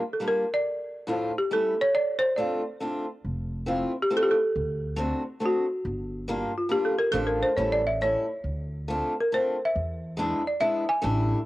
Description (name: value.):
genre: musette waltz.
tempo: 139 BPM.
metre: 3/4.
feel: swing 53% on 8ths.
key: D minor.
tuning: A4 = 441 Hz.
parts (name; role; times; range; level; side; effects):
folk marimba with hard mallets; melody; 0.1-11.1 s; F4 to G#5; -25 LUFS; equal; cassette tape.
picked old ladder-braced acoustic guitar; accompaniment; 0.2-11.4 s; A2 to F#4; -29 LUFS; left 1 dB; cassette tape.
upright bass; bass; 3.2-11.3 s; F1 to E2; -31 LUFS; equal; transformer saturation.
room: light reverb, small room reverb.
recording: home recording on cassette.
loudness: -24 LUFS.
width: side -17 dB against mid.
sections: 0.0-11.5 A section.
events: none.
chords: 0.0 Gm7; 0.6 Dm; 1.5 A7; 1.9 Dm7; 3.2 Fmaj7; 4.5 D7; 5.8 Gm7; 7.1 Dm/A; 7.6 A7; 8.4 Dm7; 9.7 E7; 11.0 A7sus4.